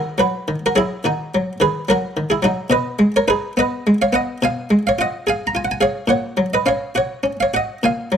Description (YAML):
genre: classical, baroque-style suite movement for harpsichord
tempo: 71 BPM (dotted quarters)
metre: 12/8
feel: rubato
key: F# major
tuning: A4 = 440 Hz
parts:
  - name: buff-stop harpsichord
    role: solo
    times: 0.0-8.2 s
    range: A#2 to A#5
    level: -16 LUFS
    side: equal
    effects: none
room: moderate stone room reverb, RT60 1.1 s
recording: none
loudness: -16 LUFS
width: side -8 dB against mid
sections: 0.0-8.2 A section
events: none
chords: 0.0 B; 2.7 G#m/B; 6.1 F#/A#